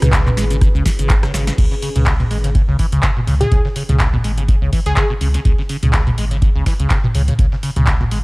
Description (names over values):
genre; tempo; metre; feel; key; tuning
acid house; 124 BPM; 4/4; swing 55% on 16ths; C# minor; A4 = 440 Hz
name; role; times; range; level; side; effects
dark analog pad; sustained chords; 0.0-1.6 s; B3 to B4; -39 LUFS; left 2 dB; none
liquid acid bass; riff; 0.0-8.2 s; B2 to C#4; -22 LUFS; equal; phaser, overdrive, wide subtle chorus, cassette tape, sidechain pumping
saturated sub bass; bass; 0.0-8.2 s; G#1 to C#2; -18 LUFS; equal; sidechain pumping
booming analog drum machine; drums; 0.0-8.2 s; cabasa, crash cymbal, handclaps, hi-hat, rim click, snare drum, toms; -21 LUFS; equal; none
dusty soul sampler-style drum kit; drums; 0.0-8.2 s; hi-hat, snare drum; -35 LUFS; equal; none
ethereal airy pad; texture; 0.0-1.6 s; C#4 to B4; -28 LUFS; equal; ensemble chorus, built-in reverb, sidechain pumping
electronic kick drum; drums; 0.1-8.0 s; none; -16 LUFS; equal; none
plucky unison lead; melody; 3.4-5.1 s; G#4; -25 LUFS; equal; tape echo
room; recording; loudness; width
digital ambience; dry, gritty hardware recording, cassette tape; -13 LUFS; side -25 dB against mid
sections
0.0-1.6 A section; 1.6-8.2 B section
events
drop 0.0-1.6; drum fill 1.3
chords
0.0 C#m7; 1.6 C#5